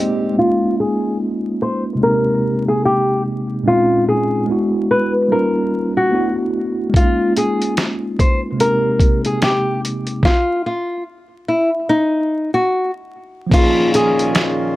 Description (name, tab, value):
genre	lo-fi hip hop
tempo	73 BPM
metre	4/4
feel	swing 58% on 16ths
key	unclear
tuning	A4 = 442 Hz
part	mellow tine electric piano	accompaniment	0.0-14.8 s	Bb2 to Ab4	-19 LUFS	equal	medium stereo tremolo, low-pass filter
part	pedal harmonium	sustained chords	0.0-0.4, 13.5-14.8 s	Bb2 to G4	-22 LUFS	right 1 dB	none
part	nylon-string guitar	melody	0.4-14.3 s	Eb4 to C5	-17 LUFS	left 1 dB	low-pass filter
part	lo-fi sampler-style drum kit	drums	6.9-14.6 s	crash cymbal, finger snaps, hi-hat, kick drum, snare drum	-16 LUFS	equal	vintage 12-bit sampler grit
part	finger snap	percussion	14.4-14.6 s	none	-30 LUFS	right 3 dB	none
room	moderate studio reverb, RT60 0.5 s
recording	vinyl crackle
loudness	-14 LUFS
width	side -16 dB against mid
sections	0.4-13.5 A section; 13.5-14.8 B section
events	break 0.0-0.4; filter sweep 0.4-13.5; stop 10.2-13.5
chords	0.4 Db69; 2.0 Abmaj9/C; 3.7 Bbm11; 4.5 E9; 5.3 Eb9; 6.1 D69; 6.9 Db69; 8.6 Abmaj9/C; 10.2 N.C.; 13.5 Db69